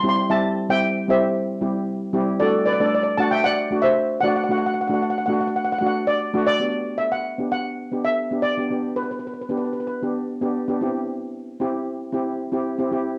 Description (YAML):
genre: calypso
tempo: 114 BPM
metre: 4/4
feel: straight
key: G major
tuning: A4 = 440 Hz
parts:
  - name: steel pan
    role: melody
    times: 0.0-9.9 s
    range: A4 to C6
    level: -24 LUFS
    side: equal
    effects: cassette tape, plate reverb
  - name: steel pan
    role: accompaniment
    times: 0.0-13.2 s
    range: G3 to A4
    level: -26 LUFS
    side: equal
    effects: cassette tape
room: moderate small room reverb, RT60 0.5 s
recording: home recording on cassette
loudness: -22 LUFS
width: mono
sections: 0.0-6.6 A section; 6.6-13.2 B section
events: none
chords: 0.0 C/G; 2.4 D; 6.6 Gmaj7; 10.8 C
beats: | 0.29 0.82 1.34 1.87 | 2.40 2.92 3.45 3.98 | 4.50 5.03 5.55 6.08 | 6.61 7.13 7.66 8.19 | 8.71 9.24 9.77 10.29 | 10.82 11.34 11.87 12.40 | 12.92